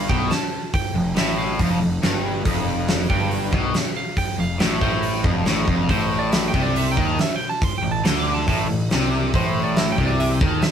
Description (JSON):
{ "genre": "blues rock power trio and southern rock", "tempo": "140 BPM", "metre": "4/4", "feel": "straight", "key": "unclear", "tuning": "A4 = 440 Hz", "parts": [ { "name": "lightly driven lead guitar", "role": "second line", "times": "0.0-10.7 s", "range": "C5 to D6", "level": "-28 LUFS", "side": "right 4 dB", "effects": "none" }, { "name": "crunchy overdriven guitar", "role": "riff", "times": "0.0-10.6 s", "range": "F2 to D#3", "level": "-22 LUFS", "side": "equal", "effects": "none" }, { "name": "fuzz picked electric bass", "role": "bass", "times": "0.0-10.6 s", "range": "F1 to D#2", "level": "-26 LUFS", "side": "equal", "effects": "overdrive" }, { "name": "big rock drum kit", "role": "drums", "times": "0.1-10.7 s", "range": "hi-hat, kick drum, snare drum", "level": "-22 LUFS", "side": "equal", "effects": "none" } ], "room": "moderate studio reverb, RT60 0.5 s", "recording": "band playing live in one room", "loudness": "-18 LUFS", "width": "side -8 dB against mid", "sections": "0.0-10.7 A section", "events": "lead electric guitar solo 0.0-10.7", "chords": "0.0 F5; 5.9 Am" }